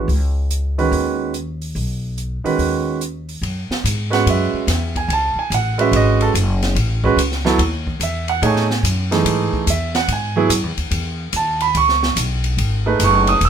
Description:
modal jazz; 144 BPM; 4/4; swing 66% on 8ths; F# dorian from 3.4 s; A4 = 440 Hz
warm baby grand piano; accompaniment; 0.0-13.5 s; D#3 to E6; -17 LUFS; right 5 dB
upright bass; bass; 0.0-13.5 s; E1 to A2; -20 LUFS; left 1 dB
open jazz drum kit; drums; 0.1-13.5 s; hi-hat, kick drum, ride cymbal, snare drum; -24 LUFS; left 1 dB
light reverb; minimal, uncompressed stereo recording; -16 LUFS; side -8 dB against mid
0.0-3.4 A section; 3.4-13.5 B section
0.1 G#m/C#; 3.4 F#m9; 10.1 C#madd9

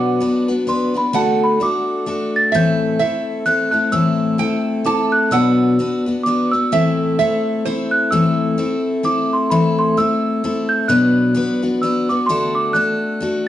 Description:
acoustic folk duo or small band; 129 BPM; 3/4; swing 59% on 8ths; A dorian; A4 = 441 Hz
celesta; melody; 0.0-13.5 s; A5 to A6; -20 LUFS; right 1 dB
lap resonator guitar; second line; 0.0-8.1 s; C5 to A5; -22 LUFS; right 8 dB
picked steel-string acoustic guitar; accompaniment; 0.0-13.5 s; A2 to B4; -17 LUFS; left 2 dB
moderate large studio reverb, RT60 0.8 s; dark, warm production, nothing above 10.7 kHz; -15 LUFS; side -12 dB against mid
0.0-8.1 A section; 8.1-13.5 A section
0.0 Bm; 1.1 D; 2.5 Am; 5.3 Bm; 6.7 Am; 10.9 Bm; 12.3 D

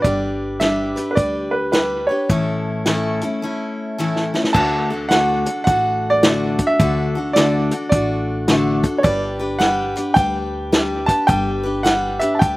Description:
honky-tonk and classic country; 107 BPM; 4/4; swing 64% on 8ths; D major; A4 = 438 Hz
clear upright piano; melody; 0.0-12.6 s; B4 to A5; -20 LUFS; right 1 dB
picked steel-string acoustic guitar; accompaniment; 0.0-12.6 s; A2 to B4; -21 LUFS; left 1 dB
upright bass; bass; 0.0-12.6 s; G1 to D2; -29 LUFS; equal
unplugged drum kit; drums; 0.0-12.6 s; crash cymbal, hi-hat, kick drum, snare drum; -18 LUFS; equal
little or no reverb; recorded outdoors, with no room sound; -16 LUFS; side -19 dB against mid
0.0-4.5 A section; 4.5-12.6 B section
drum fill 4.0-4.5
0.0 G; 2.3 A; 4.5 D; 9.0 G

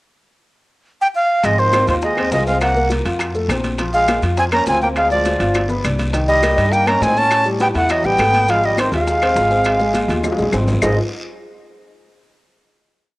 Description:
Afro-Cuban jazz; 205 BPM; 4/4; straight; Ab major; A4 = 440 Hz
breathy bright jazz flute; melody; 1.0-11.0 s; C5 to Bb5; -16 LUFS; right 1 dB
trombone with straight mute; second line; 1.4-11.0 s; Ab2 to Db4; -24 LUFS; left 1 dB; cassette tape, analog delay
warm upright piano; accompaniment; 1.4-11.0 s; Eb3 to F5; -22 LUFS; left 1 dB; cassette tape
upright bass; bass; 1.4-11.0 s; G1 to A2; -21 LUFS; equal
bongos; percussion; 1.4-10.9 s; -29 LUFS; left 2 dB
congas; percussion; 1.4-10.9 s; -29 LUFS; left 1 dB
guiro; percussion; 1.4-10.9 s; -36 LUFS; left 1 dB
maracas; percussion; 1.4-10.9 s; -37 LUFS; right 1 dB
timbales; percussion; 1.4-10.9 s; -28 LUFS; right 2 dB
claves; percussion; 1.7-10.9 s; -25 LUFS; left 2 dB
light reverb, studio ambience; home recording on cassette; -14 LUFS; side -20 dB against mid
0.3-1.4 pickup bar; 1.4-10.8 A section; 10.8-12.0 final chord
drum fill 5.3-6.1, 9.9-10.8
0.3 N.C.; 1.4 Ab6; 2.6 Gbmaj7#11/C; 3.2 F; 3.8 Bbsus2; 5.0 Dm7b5; 5.6 G7; 6.1 Cm7; 7.3 Asus2; 8.5 Ab6

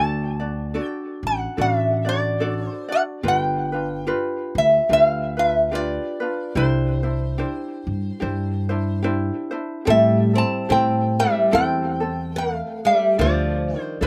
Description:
Hawaiian; 72 BPM; 4/4; swing 58% on 8ths; C major, A minor from 9.9 s; A4 = 440 Hz
metal-body resonator slide guitar; melody; 0.0-14.1 s; C5 to A5; -23 LUFS; equal
ukulele; accompaniment; 0.0-14.1 s; C4 to D5; -29 LUFS; equal; slapback echo
upright bass; bass; 0.0-14.1 s; G1 to A2; -26 LUFS; equal
oud; second line; 9.9-14.1 s; F3 to C4; -28 LUFS; equal; slapback echo
little or no reverb; recorded outdoors, with no room sound; -21 LUFS; mono
0.0-9.9 A section; 9.9-14.1 B section
0.0 D; 3.2 G7; 6.6 Cadd9; 9.9 Am7; 13.2 Dm7

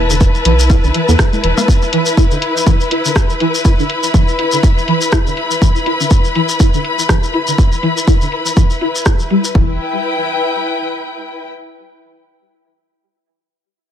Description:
minimal techno; 122 BPM; 4/4; swing 57% on 16ths; E minor; A4 = 439 Hz
rubbery square bass; bass; 0.0-1.5, 9.6-9.8 s; E1 to E2; -14 LUFS; equal; tube saturation, sidechain pumping
dark studio string section; texture; 0.0-11.5 s; E4 to B5; -18 LUFS; left 2 dB; sidechain pumping
string-like resonator pluck; riff; 0.1-9.8 s; D3 to E4; -19 LUFS; equal; ensemble chorus, sidechain pumping, ping-pong delay
shekere; percussion; 0.1-9.5 s; -22 LUFS; left 3 dB
electronic kick drum; drums; 0.2-9.7 s; -12 LUFS; equal
house drum kit; drums; 0.5-9.4 s; hi-hat, rim click; -20 LUFS; equal; low-pass filter on hats, low-pass filter on snare, low-pass filter on room
cowbell and congas; percussion; 0.7-1.7 s; -22 LUFS; left 3 dB; ping-pong delay
filtered dub chord stab; stabs; 1.1 s; B3 to A4; -24 LUFS; right 4 dB
light reverb; -11 LUFS; side -10 dB against mid
0.0-9.6 A section; 9.6-11.5 B section
filter sweep on drum 0.0-9.6; filter sweep on synth pluck 0.0-9.6
0.0 Esus4; 9.6 Em

